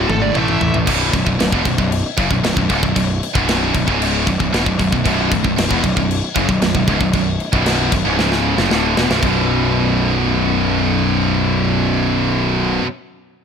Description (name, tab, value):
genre	heavy metal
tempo	115 BPM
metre	4/4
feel	straight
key	B minor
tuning	A4 = 440 Hz
part	high-gain lead guitar	melody	0.0-0.8 s	A4 to E5	-24 LUFS	right 1 dB	distortion, ping-pong delay
part	crunchy overdriven guitar	riff	0.0-0.9, 5.1-12.8 s	B1 to A3	-21 LUFS	equal	none
part	heavy high-gain guitar	riff	0.0-12.9 s	B1 to A3	-20 LUFS	right 13 dB	distortion
part	scooped high-gain guitar	riff	0.0-12.9 s	B1 to A3	-21 LUFS	left 10 dB	distortion
part	fuzz picked electric bass	bass	0.0-12.8 s	B0 to A1	-21 LUFS	equal	overdrive
part	tight metal drum kit	drums	0.1-9.3 s	crash cymbal, kick drum, snare drum, toms	-20 LUFS	equal	none
room	small room reverb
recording	none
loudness	-14 LUFS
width	side -7 dB against mid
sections	0.9-9.2 A section; 9.2-13.4 B section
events	drum fill 0.0-0.9, 8.2-9.2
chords	0.4 A5; 0.9 Bm; 9.2 B5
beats	0.35 | 0.87 1.40 1.92 2.44 | 2.96 3.48 4.00 4.53 | 5.05 5.57 6.09 6.62 | 7.14 7.66 8.18 8.70 | 9.22 9.75 10.27 10.79 | 11.32 11.84 12.36